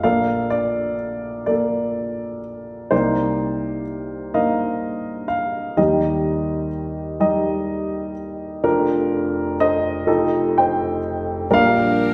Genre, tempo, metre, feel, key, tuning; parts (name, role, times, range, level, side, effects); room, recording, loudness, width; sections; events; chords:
acoustic folk-pop ballad; 42 BPM (dotted quarters); 6/8; straight; Bb major; A4 = 441 Hz
dark upright piano; melody; 0.0-12.1 s; F1 to G5; -21 LUFS; equal
warm chamber string section; sustained chords; 11.5-12.1 s; F3 to Bb4; -29 LUFS; equal
wet large studio reverb, RT60 1.3 s; heard from further back in the room; -21 LUFS; mono
0.0-11.5 A section
0.0 Bbmaj7; 2.9 Cm9; 5.8 Eb; 8.6 Bb/F; 10.1 F7; 11.5 Bb6